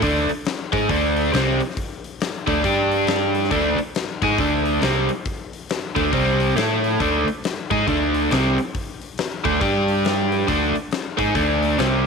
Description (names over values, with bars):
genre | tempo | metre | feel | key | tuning
blues rock power trio and southern rock | 138 BPM | 4/4 | swing 62% on 8ths | unclear | A4 = 442 Hz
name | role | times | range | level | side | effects
overdriven electric guitar | riff | 0.0-12.0 s | C3 to A4 | -19 LUFS | equal | none
fingered electric bass | bass | 0.0-12.0 s | C2 to A2 | -25 LUFS | right 1 dB | none
huge arena drum kit | drums | 0.0-11.9 s | hi-hat, kick drum, snare drum | -27 LUFS | left 4 dB | none
room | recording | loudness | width
moderate spring reverb, RT60 1.8 s, studio reverb | 1960s-style stereo | -18 LUFS | side -5 dB against mid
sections
0.0-12.1 A section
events
none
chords
0.0 D5; 2.6 G5; 3.5 D5; 6.1 C5; 6.6 A5; 7.0 D5; 9.6 G5; 10.5 D5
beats
| 0.03 0.46 0.90 1.34 | 1.77 2.21 2.64 3.08 | 3.52 3.95 4.39 4.82 | 5.26 5.69 6.13 6.56 | 7.00 7.43 7.87 8.30 | 8.74 9.17 9.61 10.04 | 10.48 10.91 11.35 11.78